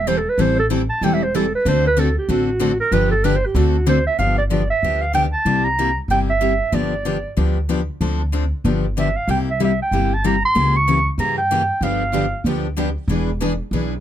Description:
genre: acoustic string swing (jazz manouche)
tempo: 189 BPM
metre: 4/4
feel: swing 61% on 8ths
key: G mixolydian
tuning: A4 = 440 Hz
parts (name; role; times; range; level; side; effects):
- breathy clarinet; melody; 0.0-12.5 s; F#4 to C#6; -19 LUFS; right 2 dB; none
- upright bass; bass; 0.0-14.0 s; E1 to G2; -21 LUFS; equal; none
- picked steel-string acoustic guitar; accompaniment; 0.1-13.9 s; C3 to A4; -22 LUFS; left 4 dB; none
- picked steel-string acoustic guitar; accompaniment; 0.1-4.0, 11.8-13.9 s; D3 to B4; -26 LUFS; right 9 dB; none
room: little or no reverb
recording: close, detailed microphones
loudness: -16 LUFS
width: side -11 dB against mid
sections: 0.0-4.2 A section; 4.2-14.0 B section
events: clarinet solo 0.0-4.2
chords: 0.0 Am7; 1.6 D7; 2.9 G7; 3.6 D7; 4.2 G7; 5.5 C7; 6.7 G7; 8.0 Dm7; 8.6 G7; 9.3 C7; 10.5 C#dim7; 11.8 G7; 13.1 E7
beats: 0.06 | 0.38 0.70 1.01 1.33 | 1.65 1.97 2.28 2.60 | 2.92 3.23 3.55 3.87 | 4.19 4.50 4.82 5.14 | 5.46 5.78 6.09 6.41 | 6.73 7.05 7.37 7.69 | 8.00 8.32 8.64 8.96 | 9.28 9.60 9.91 10.23 | 10.55 10.87 11.18 11.50 | 11.82 12.14 12.45 12.77 | 13.09 13.41 13.72

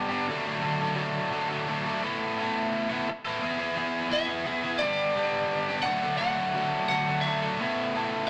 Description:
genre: rock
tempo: 86 BPM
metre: 4/4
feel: straight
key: unclear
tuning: A4 = 443 Hz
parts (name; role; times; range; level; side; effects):
- cranked stack guitar; riff; 0.0-8.3 s; D3 to A4; -29 LUFS; equal; overdrive
- lightly driven lead guitar; melody; 4.1-8.3 s; D5 to F#5; -31 LUFS; equal; none
room: wet stone room reverb, RT60 1.1 s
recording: rough rehearsal-room recording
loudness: -28 LUFS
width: mono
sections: 0.0-8.3 A section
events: none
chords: 0.3 D; 2.0 Asus2; 3.4 E; 4.8 G; 5.9 D; 7.6 Asus2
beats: 0.64 1.33 | 2.03 2.73 3.42 4.12 | 4.82 5.51 6.21 6.91 | 7.61

